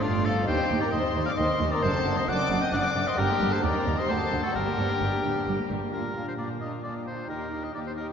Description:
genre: classical, baroque-style concerto movement with solo episodes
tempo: 132 BPM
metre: 3/4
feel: straight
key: G minor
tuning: A4 = 440 Hz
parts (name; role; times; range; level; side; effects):
- clear oboe; melody; 0.0-8.1 s; F4 to G5; -30 LUFS; left 2 dB; none
- rich chamber violin section; melody; 0.0-8.1 s; D5 to Eb6; -34 LUFS; left 4 dB; none
- rich chamber violin section; second line; 0.0-8.1 s; D4 to Eb5; -32 LUFS; left 1 dB; none
- lute; accompaniment; 0.0-8.1 s; D2 to G4; -35 LUFS; equal; none
- rich studio viola section; accompaniment; 0.0-8.1 s; G3 to Eb4; -34 LUFS; right 1 dB; none
- rich chamber cello section; bass; 0.0-8.1 s; D2 to Bb2; -32 LUFS; right 2 dB; none
- rich chamber double bass section; bass; 0.0-5.8 s; F#1 to Eb2; -33 LUFS; right 2 dB; none
room: wet cathedral reverb, RT60 4.6 s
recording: nothing above 7.5 kHz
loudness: -24 LUFS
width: side -7 dB against mid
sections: 0.0-5.9 A section; 5.9-8.1 B section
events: none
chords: 0.5 Cm/Eb; 1.8 D7/F#; 3.2 Gm; 3.6 Cm/Eb; 4.1 D7; 4.6 Gm; 5.9 Bb; 7.3 Eb

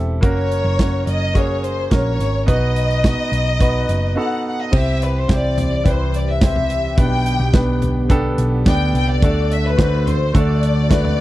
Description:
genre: piano-driven pop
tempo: 107 BPM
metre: 4/4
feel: straight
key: unclear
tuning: A4 = 441 Hz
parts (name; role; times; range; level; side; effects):
- clear baby grand piano; accompaniment; 0.0-11.2 s; B2 to D5; -22 LUFS; right 2 dB; none
- hollow-body short-scale picked electric bass; bass; 0.0-11.2 s; E1 to D2; -19 LUFS; equal; none
- warm studio violin section; melody; 0.2-11.2 s; B4 to G5; -23 LUFS; left 2 dB; none
- modern studio drum kit; drums; 0.2-11.2 s; crash cymbal, hi-hat, kick drum, snare drum, toms; -18 LUFS; equal; none
- sweeping resonant pad; sustained chords; 4.7-11.2 s; D3 to G4; -28 LUFS; left 1 dB; chorus
room: small room ambience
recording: dry, close 1970s-style studio recording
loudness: -15 LUFS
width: side -16 dB against mid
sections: 0.0-4.7 A section; 4.7-11.2 B section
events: break 4.2-4.7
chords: 0.2 F#; 2.5 B; 4.7 C; 7.0 G/B; 9.2 D

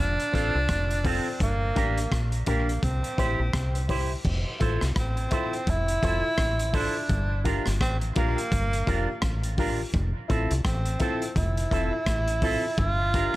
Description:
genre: roots reggae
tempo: 84 BPM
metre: 4/4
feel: swing 60% on 16ths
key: F major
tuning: A4 = 437 Hz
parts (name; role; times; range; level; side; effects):
- breathy tenor saxophone; melody; 0.0-13.4 s; Bb3 to F4; -30 LUFS; right 2 dB; dub echo
- deep dub fingered electric bass; bass; 0.0-13.3 s; F1 to C2; -27 LUFS; equal; none
- crunchy breakbeat drum kit; drums; 0.2-13.4 s; crash cymbal, hi-hat, kick drum, rim click; -29 LUFS; equal; none
- electric guitar with an envelope filter; accompaniment; 0.3-13.4 s; C4 to C5; -33 LUFS; right 5 dB; dub echo
- warm upright piano; stabs; 0.3-13.4 s; C4 to C5; -34 LUFS; left 5 dB; none
room: light reverb, small room ambience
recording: none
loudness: -23 LUFS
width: side -17 dB against mid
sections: 0.0-4.3 A section; 4.3-13.4 B section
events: none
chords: 0.0 F; 1.4 Gm; 2.8 C; 4.3 Fmaj7; 7.1 Gm7; 9.9 Fmaj7; 12.8 Gm7

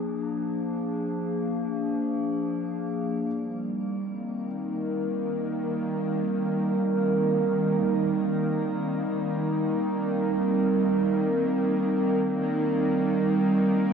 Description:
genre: ambient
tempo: free time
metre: none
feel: none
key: Eb major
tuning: A4 = 440 Hz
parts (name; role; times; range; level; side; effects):
- warbly tape-like pad; sustained chords; 0.0-13.9 s; F3 to Bb4; -25 LUFS; right 1 dB; chorus, built-in reverb, shimmer reverb
- felt-muted upright piano; arpeggios; 0.0-3.3 s; Ab5; -61 LUFS; left 2 dB; none
- bowed-like drone; drone; 3.7-13.9 s; Eb3 to Bb3; -31 LUFS; left 1 dB; built-in reverb
room: wet concert hall reverb, RT60 2.4 s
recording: worn, warbling old tape, cassette tape, warbly pitch drift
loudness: -24 LUFS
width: side -6 dB against mid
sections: 0.0-3.3 A section; 3.3-13.9 B section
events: filter sweep on ambient pad 0.0-3.3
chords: 0.0 Fm; 3.3 Eb6

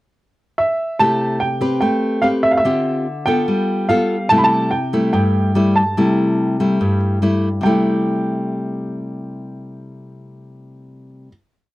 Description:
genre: bossa nova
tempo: 145 BPM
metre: 4/4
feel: straight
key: C major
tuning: A4 = 440 Hz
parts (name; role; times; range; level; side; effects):
- dark baby grand piano; melody; 0.6-11.3 s; E5 to B5; -19 LUFS; right 2 dB; none
- nylon-string guitar; accompaniment; 1.0-11.3 s; G2 to B4; -17 LUFS; left 1 dB; none
room: light reverb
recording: dry, close 1970s-style studio recording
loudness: -15 LUFS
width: side -17 dB against mid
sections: 0.0-1.0 pickup bar; 1.0-7.6 A section; 7.6-10.9 final chord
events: none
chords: 0.0 N.C.; 1.0 C6; 1.8 Am9; 2.6 Dm11; 3.5 G9; 4.3 C6

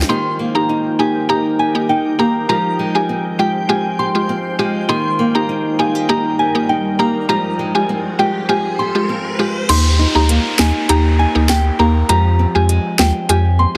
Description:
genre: dancehall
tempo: 100 BPM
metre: 4/4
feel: straight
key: unclear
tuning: A4 = 440 Hz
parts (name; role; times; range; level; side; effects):
- granular cloud pad; sustained chords; 0.0-9.7 s; G3 to G5; -28 LUFS; equal; built-in reverb
- flamenco guitar; arpeggios; 0.0-13.8 s; Eb3 to G4; -23 LUFS; equal; none
- warm sub bass; bass; 0.0, 9.7-13.7 s; D2 to F2; -16 LUFS; equal; none
- afro-pop drum kit; drums; 0.0-0.2, 9.7-13.4 s; crash cymbal, hi-hat, snare drum; -21 LUFS; equal; none
- soft synth bell; melody; 0.1-13.7 s; G5 to C6; -22 LUFS; equal; chorus, delay
- mallet-like synth pluck; accompaniment; 0.1-13.8 s; Ab3 to G4; -23 LUFS; equal; chorus
- riser and downlifter; sound effects; 7.5-13.8 s; none; -29 LUFS; equal; none
room: light reverb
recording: dense, heavily limited modern master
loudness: -16 LUFS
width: mono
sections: 0.1-9.7 A section; 9.7-13.8 B section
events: riser 7.5-9.7; kick muted 9.7-13.8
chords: 0.1 Eb; 2.5 Fmadd9; 4.9 Eb; 7.3 Fmadd9; 9.7 Eb; 12.1 Fmadd9

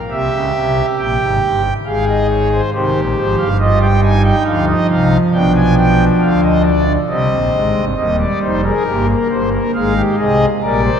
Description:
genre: classical, baroque-style 4-part fugue for pipe organ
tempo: 68 BPM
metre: 3/4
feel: straight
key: Eb major from 8.0 s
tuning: A4 = 440 Hz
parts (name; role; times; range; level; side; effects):
- pipe organ, foundations; solo; 0.1-11.0 s; Eb1 to Ab5; -12 LUFS; equal; none
room: wet church reverb, RT60 3.8 s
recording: minimal, uncompressed stereo recording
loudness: -12 LUFS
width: side -8 dB against mid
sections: 0.0-8.0 A section; 8.0-11.0 B section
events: none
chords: 0.1 C7; 1.9 Fm/Ab; 2.7 Cm; 4.5 F5; 5.3 G7/B; 7.1 Cm; 8.0 Eb; 9.7 Ab

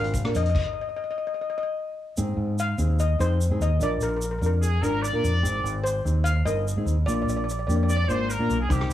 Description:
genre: calypso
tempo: 147 BPM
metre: 4/4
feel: straight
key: unclear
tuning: A4 = 438 Hz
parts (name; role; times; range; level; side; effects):
- steel pan; melody; 0.0-8.2 s; Bb4 to F5; -29 LUFS; left 2 dB; cassette tape, plate reverb
- nylon-string guitar; accompaniment; 0.0-8.9 s; Bb3 to Bb4; -29 LUFS; left 1 dB; cassette tape, plate reverb
- fingered electric bass; bass; 0.0-8.9 s; G1 to Bb2; -24 LUFS; equal; none
- street-band drum kit; drums; 0.0-0.7, 8.7-8.9 s; crash cymbal, hi-hat, kick drum, rim click; -27 LUFS; equal; cassette tape
- egg shaker; percussion; 0.1-8.9 s; none; -39 LUFS; right 3 dB; none
- clear horn section; second line; 4.6-8.9 s; G4 to D5; -29 LUFS; right 1 dB; cassette tape, plate reverb
room: light reverb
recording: home recording on cassette, small room ambience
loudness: -22 LUFS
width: side -12 dB against mid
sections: 0.0-2.2 A section; 2.2-8.9 A section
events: stop 0.5-2.2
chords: 0.0 Bb7; 0.5 N.C.; 2.2 Ab; 3.8 Bb7; 5.4 Abmaj7; 7.1 Bb7

